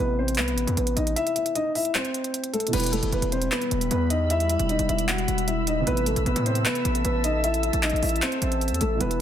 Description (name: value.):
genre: hip hop, trap.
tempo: 153 BPM.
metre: 4/4.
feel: half-time.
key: unclear.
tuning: A4 = 440 Hz.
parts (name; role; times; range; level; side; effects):
dark concert grand piano; melody; 0.0-9.2 s; A3 to F#5; -26 LUFS; left 1 dB; none.
felt-muted upright piano; accompaniment; 0.0-9.2 s; B2 to E4; -35 LUFS; right 5 dB; none.
distorted 808-style bass; bass; 0.0-9.2 s; E1 to A2; -26 LUFS; equal; distortion.
trap drum kit; drums; 0.3-9.2 s; crash cymbal, handclaps, hi-hat; -28 LUFS; right 1 dB; none.
deep dark ambient pad; sustained chords; 3.3-9.2 s; G3 to E6; -31 LUFS; left 2 dB; chorus, built-in reverb.
room: light reverb.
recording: dense, heavily limited modern master.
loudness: -22 LUFS.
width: side -10 dB against mid.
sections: 0.0-2.7 A section; 2.7-9.2 B section.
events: kick muted 1.2-2.7.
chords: 0.0 Am; 2.7 Em; 5.9 Am.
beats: 0.38 0.77 | 1.16 1.56 1.95 2.34 | 2.73 3.12 3.52 3.91 | 4.30 4.69 5.08 5.48 | 5.87 6.26 6.65 7.05 | 7.44 7.83 8.22 8.62 | 9.01.